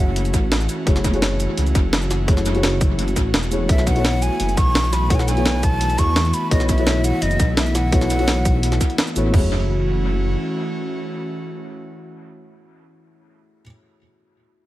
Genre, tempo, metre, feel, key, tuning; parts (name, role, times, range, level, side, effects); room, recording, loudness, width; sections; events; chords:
liquid drum and bass; 170 BPM; 4/4; straight; F# minor; A4 = 435 Hz
breathy mellow silver concert flute; melody; 0.0-0.5, 3.7-9.0 s; D#5 to C#6; -25 LUFS; right 1 dB; dub echo
felt-muted upright piano; accompaniment; 0.0-14.7 s; A3 to C#5; -26 LUFS; left 2 dB; analog delay
airy breathy pad; sustained chords; 0.0-12.9 s; E3 to F#4; -27 LUFS; equal; chorus, vintage 12-bit sampler grit, sidechain pumping
dark detuned saw bass; bass; 0.0-10.4 s; E1 to E2; -21 LUFS; equal
breakbeat sampler-style drum kit; drums; 0.2-9.2 s; hi-hat, shaker, snare drum; -24 LUFS; equal; dub echo
drum and bass drum kit; drums; 0.3-9.4 s; crash cymbal, kick drum, toms; -18 LUFS; equal; overdrive
light reverb; echo-heavy mix; -16 LUFS; side -15 dB against mid
0.0-9.3 A section; 9.3-12.2 B section
drop 0.0-9.3
0.0 F#m7; 3.7 B7sus4; 9.3 F#m7